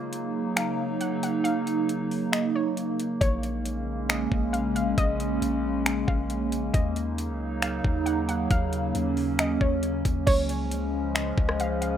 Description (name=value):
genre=hip hop, atmospheric cloud-rap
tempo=136 BPM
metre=4/4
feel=half-time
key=Eb minor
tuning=A4 = 440 Hz
part: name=warbly dusty pluck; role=melody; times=0.0-12.0 s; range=Db5 to Gb5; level=-32 LUFS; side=equal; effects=chorus, digital delay
part: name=warbly tape-like pad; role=sustained chords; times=0.0-12.0 s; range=Db3 to Eb4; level=-27 LUFS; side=right 1 dB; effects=chorus, built-in reverb, phaser, sidechain pumping
part: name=smooth R&B drum kit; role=drums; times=0.1-11.9 s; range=crash cymbal, finger snaps, hi-hat, kick drum, rim click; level=-26 LUFS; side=left 1 dB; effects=none
part: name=long sustained 808-style bass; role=bass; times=3.2-12.0 s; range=Bb1 to Eb2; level=-31 LUFS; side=equal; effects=none
room=light reverb, digital ambience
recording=rough home demo mix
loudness=-24 LUFS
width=side -9 dB against mid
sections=0.0-10.3 A section; 10.3-12.0 B section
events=break 0.0-3.2; kick muted 2.3-3.2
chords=0.0 Ebm7; 3.2 Bbm7; 6.7 Ebm7; 10.3 Db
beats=0.12 0.57 1.01 | 1.45 1.89 2.33 2.77 | 3.21 3.65 4.09 4.54 | 4.98 5.42 5.86 6.30 | 6.74 7.18 7.62 8.07 | 8.51 8.95 9.39 9.83 | 10.27 10.71 11.15 11.60